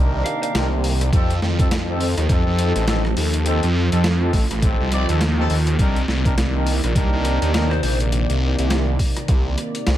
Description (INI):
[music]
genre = glitch hop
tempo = 103 BPM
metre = 4/4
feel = swing 59% on 16ths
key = C dorian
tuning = A4 = 439 Hz
[part]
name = warm analog pad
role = sustained chords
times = 0.0-10.0 s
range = C3 to D5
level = -28 LUFS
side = right 1 dB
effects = chorus, sidechain pumping
[part]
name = warm horn section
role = stabs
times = 0.0-7.7 s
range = C4 to D5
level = -26 LUFS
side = left 1 dB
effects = vintage 12-bit sampler grit, sidechain pumping, ping-pong delay
[part]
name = phased detuned saw bass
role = bass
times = 0.0-10.0 s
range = A1 to F2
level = -19 LUFS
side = equal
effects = phaser, tube saturation
[part]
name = lead guitar through a small cranked amp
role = melody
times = 0.3-0.5, 7.7-7.9 s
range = C5 to F5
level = -32 LUFS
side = left 1 dB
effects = overdrive, ping-pong delay
[part]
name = boom bap sampler-style drum kit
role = drums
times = 0.3-10.0 s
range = hi-hat, rim click, snare drum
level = -26 LUFS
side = equal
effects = overdrive
[part]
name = electronic kick drum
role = drums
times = 1.1-9.4 s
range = none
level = -19 LUFS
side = equal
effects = overdrive
[sound]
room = little or no reverb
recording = none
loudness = -17 LUFS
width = side -12 dB against mid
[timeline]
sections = 0.0-10.0 A section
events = none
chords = 0.0 Cm9; 1.1 F7; 5.8 Cm9